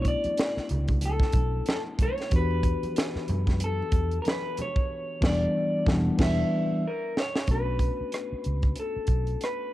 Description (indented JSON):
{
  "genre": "R&B, neo-soul",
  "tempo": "93 BPM",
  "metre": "4/4",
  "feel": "swing 57% on 16ths",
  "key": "B minor",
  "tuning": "A4 = 440 Hz",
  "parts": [
    { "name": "electric guitar through a small old amp", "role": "melody", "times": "0.0-9.7 s", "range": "A4 to E5", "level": "-31 LUFS", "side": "left 1 dB", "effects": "none" },
    { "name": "mellow tine electric piano", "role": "accompaniment", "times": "0.0-9.7 s", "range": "E3 to G4", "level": "-31 LUFS", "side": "left 1 dB", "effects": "medium stereo tremolo, cassette tape" },
    { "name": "vintage muted fingered electric bass", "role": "bass", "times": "0.0-9.3 s", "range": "E1 to F#2", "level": "-28 LUFS", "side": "equal", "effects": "tube saturation" },
    { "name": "tight funk drum kit", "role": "drums", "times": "0.0-9.6 s", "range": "crash cymbal, hi-hat, kick drum, rim click, snare drum", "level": "-27 LUFS", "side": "equal", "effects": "cassette tape" },
    { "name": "congas", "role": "percussion", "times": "0.3-4.8 s", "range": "none", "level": "-39 LUFS", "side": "right 2 dB", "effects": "none" }
  ],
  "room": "light reverb, studio ambience",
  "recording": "home recording on cassette",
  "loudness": "-24 LUFS",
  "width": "side -15 dB against mid",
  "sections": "0.0-7.5 A section; 7.5-9.7 B section",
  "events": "band accent 4.9-7.5; drum fill 6.8-7.5",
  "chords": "0.0 Bm9; 2.3 Em9; 6.8 N.C.; 7.5 Bm9"
}